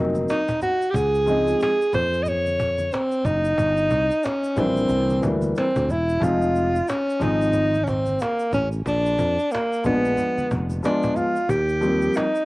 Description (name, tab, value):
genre	hip hop, jazz-hop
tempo	91 BPM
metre	4/4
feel	swing 60% on 16ths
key	unclear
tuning	A4 = 440 Hz
part	warm upright piano	accompaniment	0.0-12.2 s	E3 to F4	-24 LUFS	left 1 dB	none
part	sustaining fretless electric bass	bass	0.0-12.1 s	E1 to F2	-26 LUFS	equal	none
part	cajon	drums	0.1-12.3 s	none	-31 LUFS	equal	cassette tape
part	congas and egg shaker	percussion	0.1-12.4 s	none	-38 LUFS	right 1 dB	none
part	breathy alto saxophone	melody	0.3-12.4 s	Bb3 to Eb5	-21 LUFS	equal	cassette tape
room	light reverb, small room ambience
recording	home recording on cassette, vinyl crackle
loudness	-19 LUFS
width	side -20 dB against mid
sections	0.0-12.4 A section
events	none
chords	0.0 Ab9 (rootless); 0.9 Dbmaj7; 3.6 Gm; 4.9 C7; 6.2 Fm7; 8.9 Bb7b9; 11.5 Eb69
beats	0.29 | 0.95 1.61 2.27 2.93 | 3.59 4.25 4.91 5.56 | 6.22 6.88 7.54 8.20 | 8.86 9.52 10.18 10.84 | 11.50 12.16